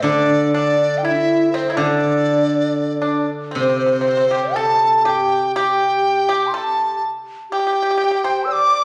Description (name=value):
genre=chinese traditional, Chinese chamber ensemble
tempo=60 BPM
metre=4/4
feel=rubato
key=G zhi mode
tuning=A4 = 440 Hz
part: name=mellow hollow dizi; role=melody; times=0.0-8.8 s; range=C5 to E6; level=-21 LUFS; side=equal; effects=none
part: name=breathy mellow low xiao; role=second line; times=0.0-8.8 s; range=D4 to G5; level=-24 LUFS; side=equal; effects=none
part: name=pipa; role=second line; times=0.0-8.8 s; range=C4 to C5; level=-26 LUFS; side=equal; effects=none
part: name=steel-string zither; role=accompaniment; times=0.0-6.5 s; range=C3 to D3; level=-26 LUFS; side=equal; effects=none
room=wet recital hall reverb, RT60 1.5 s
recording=vinyl crackle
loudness=-18 LUFS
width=mono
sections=0.0-8.8 A section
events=none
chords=none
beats=| 0.06 1.05 2.04 3.05 | 4.06 5.06 6.05 7.03 | 8.01